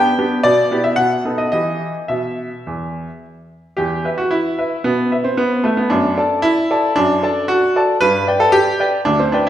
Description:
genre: classical-period piano sonatina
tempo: 112 BPM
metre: 4/4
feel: rubato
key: E minor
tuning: A4 = 440 Hz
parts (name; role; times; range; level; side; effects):
- bright baby grand piano; solo; 0.0-9.5 s; D2 to A5; -14 LUFS; equal; none
room: wet recital hall reverb, RT60 1.5 s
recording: heard from further back in the room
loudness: -14 LUFS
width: side -11 dB against mid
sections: 0.0-3.8 A section; 3.8-9.5 B section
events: none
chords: 0.4 Em/B; 1.0 B7; 1.5 Em; 3.8 E5; 5.9 D/F#; 8.0 G

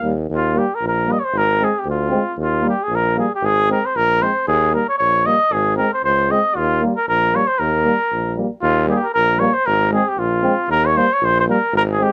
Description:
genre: balkan folk, Balkan brass band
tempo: 115 BPM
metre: 2/4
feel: swing 55% on 16ths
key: Eb mixolydian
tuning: A4 = 440 Hz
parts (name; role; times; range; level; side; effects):
- mellow cornet; melody; 0.0-12.1 s; F4 to F5; -19 LUFS; equal; none
- clear euphonium; accompaniment; 0.0-12.1 s; Bb3 to C4; -25 LUFS; equal; none
- warm euphonium; accompaniment; 0.0-12.1 s; G3 to Ab3; -27 LUFS; equal; none
- clear tuba; bass; 0.0-12.0 s; Ab1 to Eb2; -24 LUFS; equal; none
room: light reverb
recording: none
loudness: -18 LUFS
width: mono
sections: 0.3-8.6 A section; 8.6-12.1 A section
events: none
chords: 0.3 Eb; 1.3 Ab; 2.4 Eb; 3.4 Ab; 4.5 Eb; 5.5 Ab; 6.6 Eb; 9.7 Ab; 10.7 Eb

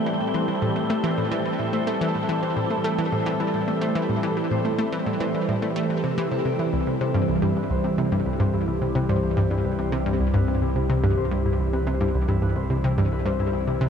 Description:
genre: ambient, sequencer-driven space music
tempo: 108 BPM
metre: 4/4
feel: straight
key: unclear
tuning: A4 = 440 Hz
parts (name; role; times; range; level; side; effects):
- phased analog pad; sustained chords; 0.0-13.9 s; E3 to A4; -26 LUFS; equal; phaser, chorus
- Celtic harp; arpeggios; 0.0-13.9 s; E4 to G5; -31 LUFS; moving between left 6 dB and right 1 dB; auto-pan, low-pass filter, tape echo
- analog pluck; riff; 0.0-13.9 s; C2 to A3; -24 LUFS; equal; chorus, tape echo
- wind-like tuned noise texture; texture; 0.0-6.7 s; G5; -40 LUFS; right 2 dB; built-in reverb
- round analog bass; bass; 6.7-13.9 s; C2; -29 LUFS; equal; none
room: wet huge ambient reverb, RT60 7.7 s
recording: dreamy mix soaked in reverb, cassette tape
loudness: -21 LUFS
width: side -7 dB against mid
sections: 0.0-6.7 A section; 6.7-13.9 B section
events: none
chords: 0.0 Am7; 6.7 Cmaj7

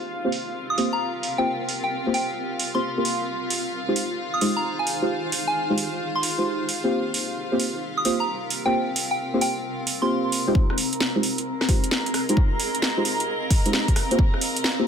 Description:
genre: UK garage, two-step garage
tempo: 132 BPM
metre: 4/4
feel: swing 66% on 16ths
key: F minor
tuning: A4 = 440 Hz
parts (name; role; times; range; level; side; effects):
- warm studio violin section; sustained chords; 0.0-14.9 s; F4 to Bb5; -31 LUFS; equal; sidechain pumping, low-pass filter
- deep mellow chord stab; stabs; 0.0-14.8 s; Ab3 to C5; -26 LUFS; equal; chorus, tape echo
- granular cloud pad; texture; 0.0-14.9 s; C4 to F5; -31 LUFS; equal; built-in reverb, sidechain pumping
- house drum kit; drums; 0.3-14.8 s; hi-hat, rim click, snare drum; -26 LUFS; right 1 dB; high-pass filter on snare, low-pass filter on snare, high-pass filter on hats, low-pass filter on hats, high-pass filter on cymbals, low-pass filter on cymbals, high-pass filter on room, low-pass filter on room
- soft synth bell; melody; 0.7-10.5 s; G5 to Eb6; -27 LUFS; left 1 dB; chorus, phaser, tape echo
- electronic kick drum; drums; 10.6-14.3 s; none; -20 LUFS; equal; none
room: light reverb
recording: none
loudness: -21 LUFS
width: side -7 dB against mid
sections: 0.0-10.6 A section; 10.6-14.9 B section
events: filter sweep on synth stab 0.0-10.6, 10.6-14.9; build-up 10.6-14.9; filter sweep on violin section 10.6-14.9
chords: 0.0 C7sus4; 3.3 Fm7; 14.0 C7sus4

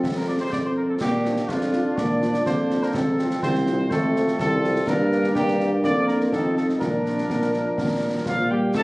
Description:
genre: military-style march for wind band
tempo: 124 BPM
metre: 2/4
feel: straight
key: Bb major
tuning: A4 = 442 Hz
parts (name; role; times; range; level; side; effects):
- warm cornet; melody; 0.0-8.8 s; F4 to D5; -28 LUFS; equal; none
- dark woodwind section; second line; 0.0-8.8 s; A3 to F4; -31 LUFS; equal; none
- mellow French horn section; accompaniment; 0.0-8.5 s; F3 to F4; -28 LUFS; left 1 dB; none
- clear trombone section; sustained chords; 0.0-8.8 s; F3 to Eb4; -30 LUFS; right 1 dB; none
- clear tuba; bass; 0.0-8.8 s; C2 to Bb2; -23 LUFS; equal; none
- concert snare drum, concert bass drum and clash cymbals; drums; 0.0-8.8 s; none; -30 LUFS; equal; none
- bright wooden piccolo; second line; 8.3-8.8 s; F5 to A5; -25 LUFS; equal; none
- dark euphonium; second line; 8.3-8.8 s; F3 to A3; -26 LUFS; equal; none
room: moderate recital hall reverb, RT60 1.5 s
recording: recorded on a phone in the room, studio reverb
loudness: -20 LUFS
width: side -22 dB against mid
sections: 0.0-8.8 A section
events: none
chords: 0.0 F5; 1.0 Bb; 2.9 F; 4.9 Gm; 5.8 Bb/F; 6.3 F7; 6.8 Bb

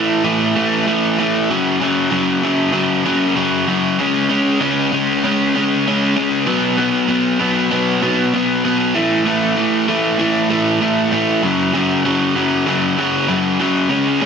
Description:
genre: rock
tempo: 97 BPM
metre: 4/4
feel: straight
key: unclear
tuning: A4 = 442 Hz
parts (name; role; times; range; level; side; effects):
- overdriven electric guitar; solo; 0.0-14.3 s; F#2 to C#4; -14 LUFS; equal; none
room: moderate large studio reverb, RT60 1.3 s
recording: dense, heavily limited modern master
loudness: -14 LUFS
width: side -6 dB against mid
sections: 0.0-14.3 A section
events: none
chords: 0.0 A5; 1.5 F#5; 4.0 C#5; 6.5 B5; 8.9 A5; 11.4 F#5

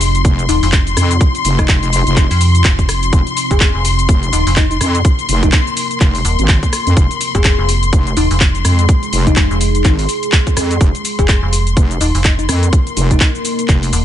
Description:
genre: bass house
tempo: 125 BPM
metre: 4/4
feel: swing 59% on 16ths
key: F minor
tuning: A4 = 440 Hz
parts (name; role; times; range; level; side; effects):
- deep dark ambient pad; sustained chords; 0.0-14.0 s; C4 to Eb5; -24 LUFS; right 1 dB; chorus, built-in reverb, vintage 12-bit sampler grit, sidechain pumping
- metallic FM bass; bass; 0.0-14.0 s; Eb1 to F2; -15 LUFS; equal; tube saturation, sidechain pumping
- garage drum kit; drums; 0.0-14.0 s; cabasa, handclaps, hi-hat, rim click; -19 LUFS; left 1 dB; none
- clear studio string section; texture; 0.0-14.0 s; C6; -21 LUFS; left 5 dB; sidechain pumping
- wobble bass; bass; 0.2-13.9 s; F1 to F2; -15 LUFS; equal; chorus, tube saturation, sidechain pumping
- electronic kick drum; drums; 0.2-13.8 s; none; -13 LUFS; equal; none
- bell-like FM electric piano; melody; 0.5-13.3 s; Eb4 to Ab4; -22 LUFS; left 3 dB; chorus, phaser, ping-pong delay
room: digital ambience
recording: nothing above 10.5 kHz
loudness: -11 LUFS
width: side -11 dB against mid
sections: 0.0-14.0 A section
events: none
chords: 0.0 F5

